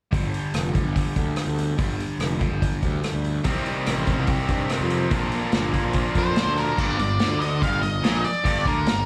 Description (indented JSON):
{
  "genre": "classic rock",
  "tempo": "144 BPM",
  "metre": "4/4",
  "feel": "straight",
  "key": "G minor",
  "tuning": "A4 = 443 Hz",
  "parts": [
    { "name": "biting overdriven guitar", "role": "riff", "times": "0.1-9.0 s", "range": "G2 to C4", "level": "-32 LUFS", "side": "equal", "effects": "phaser, slapback echo" },
    { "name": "fuzz picked electric bass", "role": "bass", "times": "0.1-9.1 s", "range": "F1 to G2", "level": "-29 LUFS", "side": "equal", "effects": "overdrive" },
    { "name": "vintage drum kit", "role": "drums", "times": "0.1-9.0 s", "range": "crash cymbal, hi-hat, kick drum, rim click, snare drum", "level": "-28 LUFS", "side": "equal", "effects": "none" },
    { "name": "tight distorted guitar", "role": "riff", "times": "3.4-9.0 s", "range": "G2 to G4", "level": "-29 LUFS", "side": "equal", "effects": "distortion, slapback echo" },
    { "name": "octave-fuzz lead guitar", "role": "melody", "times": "6.2-9.1 s", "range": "Bb4 to F5", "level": "-27 LUFS", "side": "equal", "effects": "distortion, slapback echo" }
  ],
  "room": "light reverb",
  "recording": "live gig heard through the venue's PA, club reverb",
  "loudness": "-23 LUFS",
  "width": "mono",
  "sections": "0.1-6.8 A section; 6.8-9.1 B section",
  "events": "none",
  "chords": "0.1 G5; 3.5 Cm; 5.1 Bb; 6.8 Gm"
}